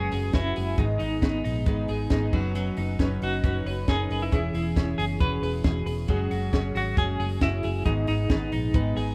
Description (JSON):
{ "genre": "jangly indie pop", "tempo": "136 BPM", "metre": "4/4", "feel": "straight", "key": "unclear", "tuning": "A4 = 444 Hz", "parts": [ { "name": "clean electric guitar", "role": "melody", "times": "0.0-8.9 s", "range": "D#4 to B4", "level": "-33 LUFS", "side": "equal", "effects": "tremolo" }, { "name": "picked steel-string acoustic guitar", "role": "accompaniment", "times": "0.0-9.1 s", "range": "G#2 to B4", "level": "-39 LUFS", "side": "equal", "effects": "none" }, { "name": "warbly lo-fi synth keys", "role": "accompaniment", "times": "0.0-9.1 s", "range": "B3 to C#5", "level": "-37 LUFS", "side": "equal", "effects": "chorus, tube saturation" }, { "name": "twelve-string electric guitar", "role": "arpeggios", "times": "0.0-9.1 s", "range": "G#2 to B4", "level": "-34 LUFS", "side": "equal", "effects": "lush chorus" }, { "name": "vintage muted fingered electric bass", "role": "bass", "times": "0.0-9.1 s", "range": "E1 to A#1", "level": "-31 LUFS", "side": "equal", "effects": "none" }, { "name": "compact cocktail drum kit", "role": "drums", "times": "0.1-9.1 s", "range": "crash cymbal, hi-hat, kick drum, snare drum", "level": "-28 LUFS", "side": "equal", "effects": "none" } ], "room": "small room reverb", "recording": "rough home demo mix", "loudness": "-26 LUFS", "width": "mono", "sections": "0.0-9.1 A section", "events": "none", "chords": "0.0 F#sus2; 0.8 G#m; 2.3 Badd9/F#; 4.3 E6; 6.1 F#sus2; 7.9 G#m", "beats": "0.34 | 0.78 1.22 1.67 2.11 | 2.55 2.99 3.43 3.88 | 4.32 4.76 5.20 5.65 | 6.09 6.53 6.97 7.42 | 7.86 8.30 8.74" }